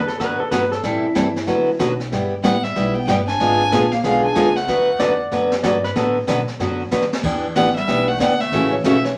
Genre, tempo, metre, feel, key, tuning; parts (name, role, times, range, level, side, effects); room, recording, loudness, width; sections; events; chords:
country, western swing; 187 BPM; 4/4; swing 64% on 8ths; D major; A4 = 440 Hz
clear fiddle; melody; 0.0-0.1, 2.4-5.2, 7.6-9.2 s; C#5 to G#5; -24 LUFS; equal
pedal steel guitar; second line; 0.0-1.8, 5.0-6.2 s; E4 to D5; -26 LUFS; equal
warm clarinet; second line; 0.0-0.1, 2.4-5.2, 7.6-9.2 s; E3 to D4; -28 LUFS; equal
upright bass; bass; 0.0-9.2 s; G1 to B2; -32 LUFS; equal
jazz brush drum kit; drums; 0.1-9.2 s; brushed snare drum, crash cymbal, hi-hat, kick drum, snare drum; -30 LUFS; equal
picked steel-string acoustic guitar; accompaniment; 0.2-9.0 s; C#3 to B4; -21 LUFS; equal
wet studio ambience, RT60 0.5 s; vinyl crackle; -19 LUFS; mono
0.0-9.2 A section
drum fill 6.9-7.2
0.0 D6; 0.8 Am7; 1.5 D6; 2.1 G6; 3.4 G#dim7; 4.7 D6; 7.2 Em7; 8.5 A6